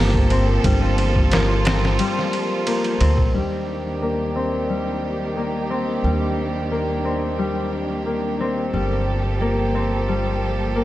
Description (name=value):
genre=trip hop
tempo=89 BPM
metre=4/4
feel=straight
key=unclear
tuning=A4 = 439 Hz
part: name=clear studio string section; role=sustained chords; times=0.0-10.8 s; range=Eb3 to A4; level=-25 LUFS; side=right 2 dB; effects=vintage 12-bit sampler grit
part: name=concert harp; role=arpeggios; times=0.0-10.8 s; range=G3 to C4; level=-23 LUFS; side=left 3 dB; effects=vintage 12-bit sampler grit, low-pass filter, tape echo
part: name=upright bass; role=bass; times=0.0-10.8 s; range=G1 to Eb2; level=-23 LUFS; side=equal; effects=none
part: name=trip hop sampler-style drum kit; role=drums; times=0.1-3.3 s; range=kick drum, ride cymbal, snare drum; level=-22 LUFS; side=equal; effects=none
room=small room ambience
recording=dry, gritty hardware recording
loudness=-19 LUFS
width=side -15 dB against mid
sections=0.0-3.3 A section; 3.3-10.8 B section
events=filter sweep on harp 3.3-10.8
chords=0.0 Gm9; 3.3 Ebmaj7; 8.7 Gm9